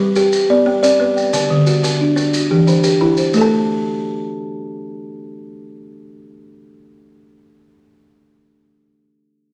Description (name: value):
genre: southern african traditional, mbira-style interlocking cycle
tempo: 119 BPM (dotted quarters)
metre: 12/8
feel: straight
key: unclear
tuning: A4 = 440 Hz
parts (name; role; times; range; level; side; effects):
- buzzing kalimba; arpeggios; 0.0-8.4 s; D3 to A5; -19 LUFS; equal; none
- folk marimba with soft mallets; arpeggios; 0.0-8.4 s; D3 to A5; -19 LUFS; equal; none
- maracas; percussion; 0.2-3.5 s; none; -28 LUFS; equal; none
room: wet large studio reverb, RT60 1.3 s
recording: none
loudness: -15 LUFS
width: mono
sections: 0.0-3.3 A section; 3.3-7.4 B section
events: none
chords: 0.3 Bm; 1.3 D; 2.3 Em; 3.3 N.C.